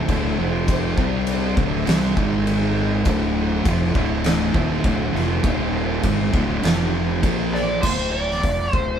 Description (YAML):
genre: stoner and doom metal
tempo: 101 BPM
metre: 4/4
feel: straight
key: D minor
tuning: A4 = 435 Hz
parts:
  - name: string machine, violas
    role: sustained chords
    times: 0.0-7.8 s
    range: D3 to G5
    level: -32 LUFS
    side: left 1 dB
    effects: none
  - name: thick fuzz guitar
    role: riff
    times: 0.0-7.8 s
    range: D2 to C4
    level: -27 LUFS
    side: left 7 dB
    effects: distortion
  - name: thick fuzz guitar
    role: riff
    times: 0.0-7.8 s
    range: D2 to C4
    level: -23 LUFS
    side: right 5 dB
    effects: distortion
  - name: fuzz fingered electric bass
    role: bass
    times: 0.0-9.0 s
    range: D1 to C2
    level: -26 LUFS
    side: equal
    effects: overdrive, tube saturation
  - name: oversized low-tuned drum kit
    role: drums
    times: 0.1-8.9 s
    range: crash cymbal, hi-hat, kick drum, snare drum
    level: -23 LUFS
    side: equal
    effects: none
  - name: fuzz lead guitar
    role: melody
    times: 7.5-9.0 s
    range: C5 to D5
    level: -23 LUFS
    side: right 1 dB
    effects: wah, distortion
room: light reverb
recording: band playing live in one room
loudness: -18 LUFS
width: side -8 dB against mid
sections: 0.0-7.8 A section; 7.8-9.0 B section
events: none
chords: 0.4 F5; 1.0 C5; 1.6 D5; 2.2 G#5; 3.1 Dm; 5.5 Eb5; 6.1 D5; 6.6 F5; 7.2 Bb5; 7.8 Dm